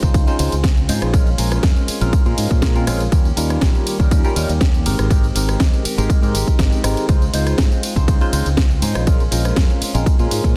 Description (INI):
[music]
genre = filtered disco house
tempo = 121 BPM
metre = 4/4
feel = straight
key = Bb dorian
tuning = A4 = 440 Hz
[part]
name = barky tine electric piano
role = accompaniment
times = 0.0-10.6 s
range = G3 to C5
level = -26 LUFS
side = equal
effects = phaser, vintage 12-bit sampler grit, sidechain pumping
[part]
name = direct-recorded clean electric guitar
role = riff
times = 0.0-10.6 s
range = Eb3 to G4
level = -32 LUFS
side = equal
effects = subtle chorus, sidechain pumping
[part]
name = modern bright fingered electric bass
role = bass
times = 0.0-10.6 s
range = Ab1 to Bb2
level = -23 LUFS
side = equal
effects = sidechain pumping
[part]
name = electronic kick drum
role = drums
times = 0.0-10.5 s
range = none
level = -18 LUFS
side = equal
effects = overdrive
[part]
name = house drum kit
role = drums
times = 0.0-10.5 s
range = hi-hat, ride cymbal, rim click, snare drum, tambourine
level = -27 LUFS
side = equal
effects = overdrive, sidechain pumping on hats, sidechain pumping on perc, sidechain pumping on cymbals
[sound]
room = digital ambience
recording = dense, heavily limited modern master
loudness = -17 LUFS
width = mono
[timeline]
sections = 0.0-10.6 A section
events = none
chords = 0.0 Dbmaj7; 1.1 Bbm7; 3.1 Eb7; 4.9 Abmaj7; 7.1 Dbmaj7; 9.1 Bbm7